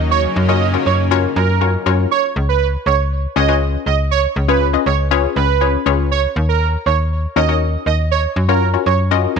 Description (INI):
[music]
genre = pop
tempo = 120 BPM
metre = 4/4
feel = straight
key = unclear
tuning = A4 = 440 Hz
[part]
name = wide unison pluck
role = accompaniment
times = 0.0-9.4 s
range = Db4 to Eb5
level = -18 LUFS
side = left 13 dB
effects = none
[part]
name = lush unison pad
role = sustained chords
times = 0.0-2.1 s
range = Db3 to Eb4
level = -23 LUFS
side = left 2 dB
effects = chorus
[part]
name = slap-like FM bass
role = bass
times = 0.0-9.4 s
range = Db2 to Gb2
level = -17 LUFS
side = equal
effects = none
[part]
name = octave-doubled lead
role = melody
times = 0.1-9.4 s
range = Bb4 to Eb5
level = -18 LUFS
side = right 11 dB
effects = chorus, tape echo
[sound]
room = light reverb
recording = 1960s-style stereo with parts hard left and right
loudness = -14 LUFS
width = side -6 dB against mid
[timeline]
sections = 0.0-2.1 A section; 2.1-9.4 A section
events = drop 0.0-2.1, 2.1-9.4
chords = 0.1 Gbmaj7; 2.1 Db7; 6.1 Ebm7; 8.1 Gbmaj7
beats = | 0.11 0.61 1.11 1.61 | 2.11 2.61 3.11 3.61 | 4.11 4.61 5.11 5.61 | 6.11 6.61 7.11 7.61 | 8.11 8.61 9.11